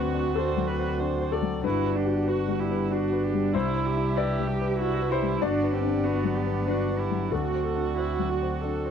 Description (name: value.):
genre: neoclassical piano and strings.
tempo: 95 BPM.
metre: 3/4.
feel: rubato.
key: G major.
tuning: A4 = 442 Hz.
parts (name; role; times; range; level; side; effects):
muted cello; second line; 0.0-8.9 s; B3 to G4; -30 LUFS; right 9 dB; none.
muted viola; accompaniment; 0.0-8.9 s; E4 to D5; -33 LUFS; right 4 dB; none.
warm grand piano; accompaniment; 0.0-8.9 s; C2 to D5; -28 LUFS; left 9 dB; none.
pedal harmonium; sustained chords; 0.0-8.9 s; G3 to F#5; -37 LUFS; right 4 dB; none.
muted double bass; bass; 0.0-8.9 s; G1 to D2; -31 LUFS; right 1 dB; none.
room: small room ambience.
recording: dry, close 1970s-style studio recording.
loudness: -24 LUFS.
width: side -8 dB against mid.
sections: 0.0-8.9 A section.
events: none.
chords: 0.0 D7; 1.6 Gmaj7; 3.5 Cmaj7; 5.4 Gmaj7; 7.3 D7.